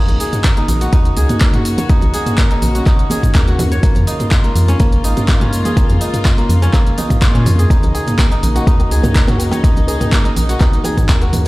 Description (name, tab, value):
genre	afro house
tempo	124 BPM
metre	4/4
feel	straight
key	Eb minor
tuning	A4 = 440 Hz
part	dark studio string section	sustained chords	0.0-11.5 s	Db3 to Gb4	-24 LUFS	left 1 dB	sidechain pumping
part	kora	arpeggios	0.0-11.5 s	Bb3 to Db5	-22 LUFS	equal	sidechain pumping, digital delay
part	round analog bass	bass	0.0-11.5 s	Ab1 to Bb2	-15 LUFS	equal	tube saturation, sidechain pumping
part	deep house drum kit	drums	0.1-11.5 s	cabasa, finger snaps, handclaps, hi-hat, toms	-20 LUFS	equal	none
part	congas	percussion	0.1-11.5 s	none	-23 LUFS	right 2 dB	none
part	electronic kick drum	drums	0.4-11.2 s	none	-13 LUFS	equal	none
part	djembe	percussion	7.9-11.3 s	none	-24 LUFS	equal	none
room	little or no reverb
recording	played on a big sound system in a bare room, stone room reverb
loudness	-11 LUFS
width	side -20 dB against mid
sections	0.0-11.5 A section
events	none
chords	0.0 Ebm7; 3.8 Bbm7; 7.7 Ebm7